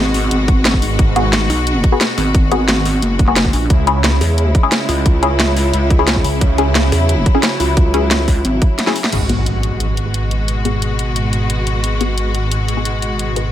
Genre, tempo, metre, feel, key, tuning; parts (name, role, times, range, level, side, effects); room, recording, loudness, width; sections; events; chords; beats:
dark technical drum and bass; 177 BPM; 4/4; straight; G# minor; A4 = 440 Hz
bright symphonic string section; sustained chords; 0.0-13.5 s; B2 to F#4; -21 LUFS; equal; sidechain pumping
pulsing pluck wobble bass; bass; 0.0-8.6 s; F#1 to E2; -16 LUFS; equal; chorus, tube saturation
drum and bass drum kit; drums; 0.1-13.4 s; crash cymbal, hi-hat, snare drum; -18 LUFS; equal; overdrive
electronic kick drum; drums; 0.5-8.7 s; -13 LUFS; equal; overdrive
wide detuned saw bass; bass; 0.8-1.5, 3.7-4.2, 6.2-6.9, 9.1-13.5 s; G#1 to C#2; -18 LUFS; equal; chorus, overdrive, sidechain pumping
filtered dub chord stab; stabs; 1.2-13.5 s; B3 to G#4; -19 LUFS; left 3 dB; phaser, digital delay
impact; sound effects; 9.1-10.5 s; -22 LUFS; equal
digital ambience; -13 LUFS; side -11 dB against mid
0.0-9.1 A section; 9.1-13.5 B section
drop 0.0-9.1; kick drops out 8.8-9.1; drum fill 8.8-9.1; band accent 9.0; impact 9.1-10.5; filter sweep on synth stab 9.1-13.5
0.0 G#m7; 3.7 C#m; 9.1 G#m7
0.31 0.65 | 0.99 1.33 1.67 2.01 | 2.35 2.69 3.02 3.36 | 3.70 4.04 4.38 4.72 | 5.06 5.40 5.74 6.08 | 6.41 6.75 7.09 7.43 | 7.77 8.11 8.45 8.79 | 9.13 9.46 9.80 10.14 | 10.48 10.82 11.16 11.50 | 11.84 12.18 12.52 12.86 | 13.19